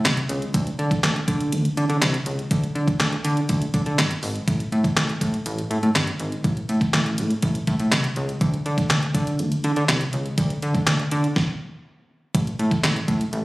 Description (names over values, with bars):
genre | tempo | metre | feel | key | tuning
dance-pop | 122 BPM | 4/4 | straight | unclear | A4 = 440 Hz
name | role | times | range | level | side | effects
plucky analog bass | bass | 0.0-13.4 s | G1 to D3 | -22 LUFS | equal | sidechain pumping
detuned 8-bit digital drum machine | drums | 0.1-13.4 s | handclaps, hi-hat, kick drum, snare drum | -23 LUFS | equal | overdrive
room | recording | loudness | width
light reverb | recorded on a phone in the room, studio reverb | -20 LUFS | side -20 dB against mid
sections
0.0-12.3 A section; 12.3-13.4 A section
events
drop 0.0-12.3, 12.3-13.4; stop 11.4-12.3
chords
none